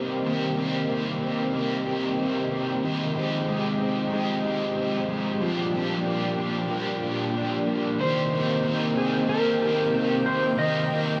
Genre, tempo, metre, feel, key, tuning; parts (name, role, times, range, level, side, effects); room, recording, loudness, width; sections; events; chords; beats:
dream pop; 93 BPM; 4/4; straight; C minor; A4 = 439 Hz
biting overdriven guitar; accompaniment; 0.0-11.2 s; G2 to G4; -31 LUFS; equal; harmonic tremolo, lush chorus
lush unison pad; sustained chords; 0.0-11.2 s; Bb2 to G5; -32 LUFS; equal; chorus
electric guitar through a small old amp; arpeggios; 0.0-11.2 s; Eb3 to G4; -30 LUFS; equal; ensemble chorus, tape echo
clean lap steel guitar; melody; 8.0-11.2 s; Ab4 to Eb5; -28 LUFS; equal
wet huge ambient reverb, RT60 4.8 s; dark, warm production; -26 LUFS; mono
0.0-8.0 A section; 8.0-11.2 B section
0.0 Cm7; 2.8 Fm9/C; 5.4 Gm7; 8.0 Cm7
| 0.26 0.90 1.55 2.19 | 2.84 3.48 4.13 4.77 | 5.42 6.07 6.71 7.36 | 8.00 8.64 9.29 9.94 | 10.58